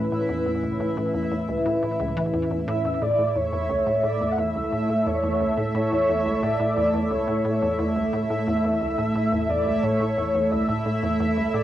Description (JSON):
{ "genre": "ambient, sequencer-driven space music", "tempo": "88 BPM", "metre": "4/4", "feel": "straight", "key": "unclear", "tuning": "A4 = 440 Hz", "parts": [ { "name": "sweeping resonant pad", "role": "sustained chords", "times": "0.0-11.6 s", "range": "A2 to E5", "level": "-25 LUFS", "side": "right 1 dB", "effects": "chorus, cassette tape" }, { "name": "resonant blip pluck", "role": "riff", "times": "0.0-11.6 s", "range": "C#2 to E3", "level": "-28 LUFS", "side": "equal", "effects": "chorus, cassette tape, tape echo" }, { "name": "bubbling stepped-filter texture", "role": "texture", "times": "0.0-11.6 s", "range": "E4 to E5", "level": "-31 LUFS", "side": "left 1 dB", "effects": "chorus, built-in reverb, cassette tape, plate reverb" }, { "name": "breathy flute-like synth lead", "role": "melody", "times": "2.7-11.6 s", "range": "C#5 to F#5", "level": "-25 LUFS", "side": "equal", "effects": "ensemble chorus, cassette tape, plate reverb, tape echo" } ], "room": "wet booth ambience, RT60 0.2 s", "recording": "home recording on cassette", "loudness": "-21 LUFS", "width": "side -12 dB against mid", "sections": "0.0-3.0 A section; 3.0-11.6 B section", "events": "none", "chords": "0.0 Aadd9; 3.0 A", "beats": "| 0.29 0.97 1.66 2.34 | 3.02 3.70 4.38 5.07 | 5.75 6.43 7.11 7.79 | 8.47 9.16 9.84 10.52 | 11.20" }